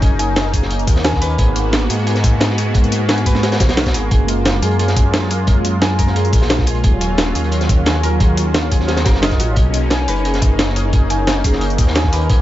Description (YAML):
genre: liquid drum and bass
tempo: 176 BPM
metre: 4/4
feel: straight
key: unclear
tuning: A4 = 444 Hz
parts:
  - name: warm analog pad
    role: sustained chords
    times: 0.0-12.4 s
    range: F#3 to F#4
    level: -22 LUFS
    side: equal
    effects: chorus, sidechain pumping
  - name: concert harp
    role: arpeggios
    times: 0.0-12.4 s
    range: F#4 to G#5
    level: -25 LUFS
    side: equal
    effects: tape echo
  - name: swelling detuned saw bass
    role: bass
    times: 0.0-12.4 s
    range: D#1 to G#2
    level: -18 LUFS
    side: equal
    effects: none
  - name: breakbeat sampler-style drum kit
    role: drums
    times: 0.0-12.4 s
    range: hi-hat, snare drum, tambourine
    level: -20 LUFS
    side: equal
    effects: small room ambience
  - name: crunchy breakbeat drum kit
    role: drums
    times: 0.0-12.4 s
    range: hi-hat, snare drum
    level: -24 LUFS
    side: equal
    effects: high-pass filter on hats, small room ambience, high-pass filter on snare, high-pass filter on room
  - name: electronic kick drum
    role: drums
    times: 0.0-12.4 s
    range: none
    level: -15 LUFS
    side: equal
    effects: small room ambience
room: light reverb, small room ambience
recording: nothing above 7.7 kHz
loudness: -13 LUFS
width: side -14 dB against mid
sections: 0.0-12.4 A section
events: none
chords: 0.0 Bmaj9; 1.4 G#m9; 4.1 F#maj9; 6.8 D#m9; 9.6 Bmaj9